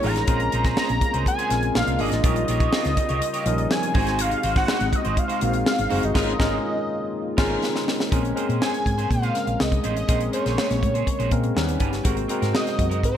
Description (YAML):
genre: polished 1980s jazz-funk pop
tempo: 122 BPM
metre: 4/4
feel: straight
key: Bb minor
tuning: A4 = 441 Hz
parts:
  - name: fat analog lead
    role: melody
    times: 0.0-13.2 s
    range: C5 to Bb5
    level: -26 LUFS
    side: equal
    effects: none
  - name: tine electric piano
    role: accompaniment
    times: 0.0-13.2 s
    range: F3 to A5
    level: -27 LUFS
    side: left 2 dB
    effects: wide subtle chorus
  - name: chorused pulse-width pad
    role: sustained chords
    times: 0.0-13.2 s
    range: Bb2 to G4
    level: -35 LUFS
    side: left 2 dB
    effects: none
  - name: electric guitar at the edge of break-up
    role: riff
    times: 0.0-13.2 s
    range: C4 to D5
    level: -32 LUFS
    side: right 8 dB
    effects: lush chorus
  - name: hollow-body short-scale fingered electric bass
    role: bass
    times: 0.0-13.2 s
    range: Gb1 to Bb2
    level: -26 LUFS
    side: equal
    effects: none
  - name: tight funk drum kit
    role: drums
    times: 0.0-13.2 s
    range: crash cymbal, hi-hat, kick drum, snare drum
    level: -24 LUFS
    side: equal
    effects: gated reverb
room: moderate plate reverb, RT60 1.1 s, studio ambience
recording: bright 1980s-style digital production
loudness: -20 LUFS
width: side -10 dB against mid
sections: 0.0-8.1 A section; 8.1-13.2 B section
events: band accent 6.2-8.1; tine electric piano fill 6.7-8.1, 11.1-12.1; drum fill 7.6-8.1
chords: 0.3 Bbm9; 1.8 Bb7; 2.2 Eb9/Bb; 4.0 Ab7; 6.2 Db69/Ab; 8.1 Bbm9; 11.6 Eb7alt; 12.1 Ab9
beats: | 0.28 0.77 1.26 1.75 | 2.24 2.73 3.22 3.71 | 4.20 4.69 5.18 5.67 | 6.16 6.65 7.14 7.63 | 8.12 8.61 9.11 9.60 | 10.09 10.58 11.07 11.56 | 12.05 12.55 13.04